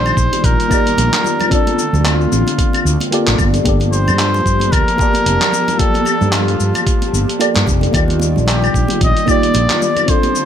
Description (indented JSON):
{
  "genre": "sunset chillout",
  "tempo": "112 BPM",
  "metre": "4/4",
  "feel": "swing 57% on 16ths",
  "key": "G minor",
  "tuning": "A4 = 442 Hz",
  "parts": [
    { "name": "trumpet with cup mute", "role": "melody", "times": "0.0-10.5 s", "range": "F4 to Eb5", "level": "-19 LUFS", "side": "equal", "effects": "tape echo" },
    { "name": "mellow FM electric piano", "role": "accompaniment", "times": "0.0-10.5 s", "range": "Bb3 to A5", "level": "-20 LUFS", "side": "moving between left 6 dB and right 3 dB", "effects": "chorus, phaser, auto-pan, digital delay" },
    { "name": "airy breathy pad", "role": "sustained chords", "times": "0.0-10.5 s", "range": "D3 to A5", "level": "-22 LUFS", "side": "left 2 dB", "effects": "chorus" },
    { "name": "fretless electric bass", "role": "bass", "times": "0.0-9.7 s", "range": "F1 to G2", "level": "-16 LUFS", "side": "equal", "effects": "tube saturation" },
    { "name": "dusty soul sampler-style drum kit", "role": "drums", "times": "0.1-10.5 s", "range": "claves, handclaps, hi-hat, shaker", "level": "-20 LUFS", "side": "left 2 dB", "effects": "overdrive" },
    { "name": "congas", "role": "percussion", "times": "0.1-10.3 s", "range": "none", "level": "-25 LUFS", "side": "right 4 dB", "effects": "none" },
    { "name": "electronic kick drum", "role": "drums", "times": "0.2-10.2 s", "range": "none", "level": "-17 LUFS", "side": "equal", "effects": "overdrive" }
  ],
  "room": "light reverb, digital ambience",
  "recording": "none",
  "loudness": "-12 LUFS",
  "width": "side -9 dB against mid",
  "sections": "0.0-10.5 A section",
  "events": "none",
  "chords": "0.0 Ebmaj9; 1.5 Dm7; 3.4 Gm9; 7.9 Ebmaj9"
}